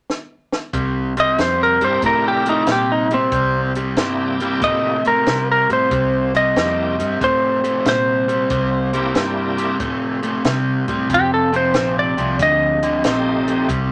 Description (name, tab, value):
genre	electric blues shuffle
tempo	93 BPM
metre	4/4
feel	swing 67% on 8ths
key	unclear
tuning	A4 = 440 Hz
part	compact cocktail drum kit	drums	0.1-13.9 s	hi-hat, kick drum, snare drum	-25 LUFS	equal	none
part	overdriven electric guitar	riff	0.7-13.9 s	F2 to A3	-23 LUFS	equal	none
part	vintage muted fingered electric bass	bass	0.7-13.9 s	F1 to C3	-28 LUFS	equal	none
part	clean lap steel guitar	melody	1.2-13.7 s	C4 to Eb5	-20 LUFS	equal	none
part	bright tonewheel organ	accompaniment	1.8-13.7 s	A3 to Bb4	-27 LUFS	equal	slow rotary speaker, overdrive, chorus vibrato
room	moderate club ambience, RT60 0.5 s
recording	none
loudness	-18 LUFS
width	mono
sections	0.7-13.9 A section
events	drum fill 0.1-0.7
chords	0.0 N.C.; 0.7 C9; 11.1 F9